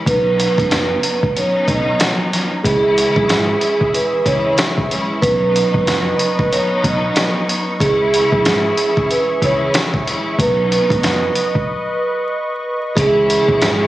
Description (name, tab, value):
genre	hip hop, boom-bap hip-hop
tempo	93 BPM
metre	4/4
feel	swing 60% on 16ths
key	C# minor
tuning	A4 = 436 Hz
part	dark studio string section	accompaniment	0.0-13.9 s	E3 to E4	-20 LUFS	left 1 dB	cassette tape, high-pass filter, low-pass filter
part	vibraphone with soft mallets	melody	0.1-13.9 s	G#4 to D#5	-18 LUFS	right 2 dB	high-pass filter, low-pass filter, ping-pong delay
part	fingered electric bass	bass	0.1-13.9 s	F#1 to C#2	-23 LUFS	equal	none
part	lo-fi sampler-style drum kit	drums	0.1-13.8 s	hi-hat, kick drum, snare drum	-19 LUFS	equal	none
part	warm analog pad	sustained chords	3.0-13.9 s	G#4 to C#6	-24 LUFS	equal	chorus, high-pass filter, low-pass filter
room	light reverb, digital ambience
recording	recorded on a phone in the room, studio reverb, vinyl crackle, compression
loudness	-14 LUFS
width	side -15 dB against mid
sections	0.0-13.0 A section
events	break 11.7-13.0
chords	0.1 Badd9; 2.6 C#m; 5.2 Badd9; 7.8 C#m; 10.4 Badd9; 13.0 C#m